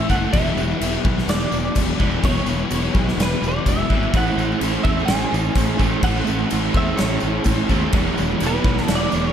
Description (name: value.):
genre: rock, shoegaze and dream pop.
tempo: 126 BPM.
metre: 4/4.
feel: straight.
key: A major.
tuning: A4 = 438 Hz.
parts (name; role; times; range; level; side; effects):
direct-recorded clean electric guitar; melody; 0.0-9.3 s; B4 to G#5; -27 LUFS; right 2 dB; ensemble chorus, slapback echo.
twelve-string electric guitar; arpeggios; 0.0-9.3 s; E3 to D4; -32 LUFS; right 9 dB; none.
crunchy overdriven guitar; riff; 0.0-9.3 s; E3 to D5; -26 LUFS; left 11 dB; analog chorus.
distorted electric guitar; riff; 0.0-9.3 s; E2 to A3; -26 LUFS; right 1 dB; distortion.
fuzz fingered electric bass; bass; 0.1-9.3 s; E1 to E2; -24 LUFS; equal; overdrive.
gated 80s drum kit; drums; 0.1-9.0 s; crash cymbal, kick drum, snare drum; -22 LUFS; equal; none.
tambourine; percussion; 0.1-9.2 s; none; -40 LUFS; right 11 dB; none.
crunchy overdriven guitar; riff; 4.1-9.3 s; E3 to D5; -25 LUFS; right 13 dB; reverse reverb.
room: studio reverb.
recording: none.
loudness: -17 LUFS.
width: side -9 dB against mid.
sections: 0.0-9.3 A section.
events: none.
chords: 0.3 Esus2; 4.1 Amaj7; 7.9 E9sus4.